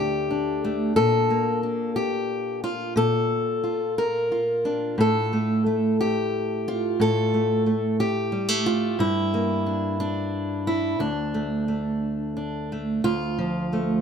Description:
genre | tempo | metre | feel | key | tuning
folk, solo fingerstyle acoustic guitar | 60 BPM (dotted quarters) | 6/8 | rubato | unclear | A4 = 440 Hz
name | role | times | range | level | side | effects
fingerpicked steel-string acoustic guitar | solo | 0.0-14.0 s | D2 to Bb4 | -22 LUFS | equal | none
room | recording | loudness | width
light reverb | close, detailed microphones | -22 LUFS | side -7 dB against mid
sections
0.0-13.0 A section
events
none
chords
0.0 D5; 1.0 Bb; 5.0 F/A; 9.0 Gm; 11.0 D5; 13.0 F/D

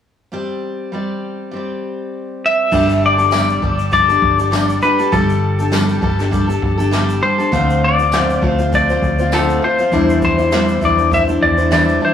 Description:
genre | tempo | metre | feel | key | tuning
acoustic pop | 100 BPM | 4/4 | swing 55% on 16ths | unclear | A4 = 440 Hz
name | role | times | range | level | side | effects
picked steel-string acoustic guitar | accompaniment | 0.3-12.1 s | D3 to D5 | -18 LUFS | left 1 dB | none
clean lap steel guitar | melody | 2.5-12.1 s | A4 to E5 | -16 LUFS | left 2 dB | none
vintage muted fingered electric bass | bass | 2.7-12.0 s | G1 to E2 | -19 LUFS | equal | none
jazz brush drum kit | drums | 2.7-12.0 s | crash cymbal, kick drum, shaker, snare drum | -23 LUFS | equal | none
tambourine | percussion | 3.3-11.9 s | none | -34 LUFS | left 2 dB | none
room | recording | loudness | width
moderate stone room reverb, RT60 1.1 s | rough rehearsal-room recording, tube saturation, studio ambience | -13 LUFS | side -8 dB against mid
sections
0.3-2.7 A section; 2.7-12.1 B section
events
none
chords
0.3 Gsus4; 2.7 Gsus2; 7.5 Dm7; 9.9 Cadd9/E

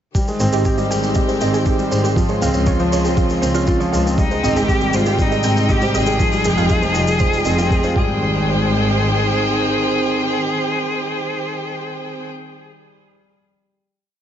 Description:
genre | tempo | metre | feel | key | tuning
piano and strings electronica | 119 BPM | 4/4 | straight | Ab major | A4 = 441 Hz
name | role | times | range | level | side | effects
dark chamber string section | sustained chords | 0.1-12.3 s | C3 to G5 | -24 LUFS | equal | sidechain pumping
warbly dusty pluck | arpeggios | 0.1-8.4 s | F4 to G5 | -25 LUFS | right 4 dB | chorus, sidechain pumping, ping-pong delay
electronic kick drum | drums | 0.1-8.1 s | none | -19 LUFS | equal | none
felt-muted upright piano | riff | 0.2-14.2 s | F3 to G4 | -21 LUFS | equal | ping-pong delay
shaker | drums | 0.2-7.9 s | none | -30 LUFS | equal | none
clear studio double bass section | bass | 0.4-9.7 s | F1 to Db2 | -21 LUFS | equal | sidechain pumping
dark cello | melody | 4.2-12.3 s | Eb4 to Ab4 | -22 LUFS | left 1 dB | ping-pong delay
room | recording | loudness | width
light reverb, small room reverb | nothing above 7.7 kHz | -15 LUFS | side -10 dB against mid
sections
0.1-8.2 drop; 8.2-12.2 final hit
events
drop 0.1-8.2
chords
0.1 Abmaj7; 2.2 Dbmaj7; 4.2 Abmaj7; 6.2 Fm9; 8.0 Abmaj7

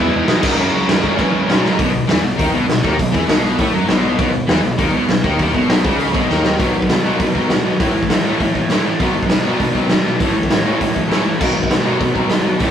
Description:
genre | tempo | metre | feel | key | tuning
punk rock | 200 BPM | 4/4 | straight | B major, B mixolydian from 6.6 s | A4 = 441 Hz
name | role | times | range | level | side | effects
dark smooth lead guitar | melody | 0.0-1.6 s | C#4 to E5 | -23 LUFS | right 1 dB | overdrive
crunchy overdriven guitar | riff | 0.0-12.7 s | E2 to B3 | -24 LUFS | right 4 dB | none
distorted electric guitar | riff | 0.0-12.7 s | E2 to B3 | -21 LUFS | equal | distortion
tight distorted guitar | riff | 0.0-12.7 s | F#2 to E4 | -21 LUFS | left 4 dB | distortion
dark bass clarinet | bass | 0.0-12.7 s | B1 to E3 | -24 LUFS | equal | none
raw garage drum kit | drums | 0.3-12.7 s | crash cymbal, hi-hat, kick drum, snare drum | -16 LUFS | equal | none
room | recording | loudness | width
light reverb | rough rehearsal-room recording, warm saturation | -14 LUFS | side -9 dB against mid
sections
0.0-1.8 A section; 1.8-6.6 B section; 6.6-12.7 C section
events
drum fill 1.6, 6.3-6.6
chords
0.4 F#; 1.8 B; 7.8 A5; 9.0 B; 10.2 A5; 11.4 B

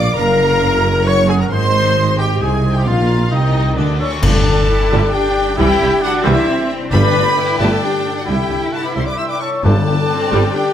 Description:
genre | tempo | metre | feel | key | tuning
cinematic, heroic adventure film score | 133 BPM | 3/4 | straight | G major from 4.2 s | A4 = 444 Hz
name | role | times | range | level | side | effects
clear symphonic violin section | melody | 0.0-10.7 s | D5 to E6 | -26 LUFS | left 2 dB | none
mellow large flute ensemble | second line | 0.0-10.7 s | Bb4 to E6 | -25 LUFS | left 2 dB | none
warm symphonic violin section | second line | 0.0-10.7 s | D5 to D6 | -27 LUFS | left 2 dB | none
warm symphonic viola section | accompaniment | 0.0-10.5 s | D3 to D5 | -23 LUFS | equal | none
mellow French horn section | sustained chords | 0.0-10.7 s | D4 to E5 | -20 LUFS | left 3 dB | none
concert harp | arpeggios | 0.0-10.7 s | Gb2 to D6 | -28 LUFS | left 9 dB | none
dark trumpet section | stabs | 0.0-4.2 s | D4 to D5 | -23 LUFS | right 1 dB | none
dark symphonic cello section | bass | 0.0-10.7 s | Gb2 to E4 | -23 LUFS | right 2 dB | none
mellow tuba | bass | 0.0-10.4 s | Gb1 to D2 | -22 LUFS | right 3 dB | none
warm symphonic double bass section | bass | 0.0-10.4 s | Gb1 to G2 | -19 LUFS | right 3 dB | none
mellow oboe | second line | 0.2-10.7 s | C4 to Db5 | -25 LUFS | right 1 dB | none
cymbal swell, clash cymbals and concert bass drum | percussion | 1.5-5.1 s | none | -20 LUFS | equal | none
timpani | percussion | 4.2-4.9, 6.9-7.6, 9.7-10.3 s | G2 | -21 LUFS | left 3 dB | none
room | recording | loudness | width
moderate recital hall reverb, RT60 1.4 s | none | -13 LUFS | side -10 dB against mid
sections
0.0-4.2 A section; 4.2-10.7 B section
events
band accent 4.2-4.7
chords
0.2 Gb; 1.5 Ab; 2.9 Bbsus2; 3.8 D7; 4.2 Gsus2; 5.6 Cadd9; 6.9 Gsus2; 8.3 Cadd9; 9.7 Gsus2

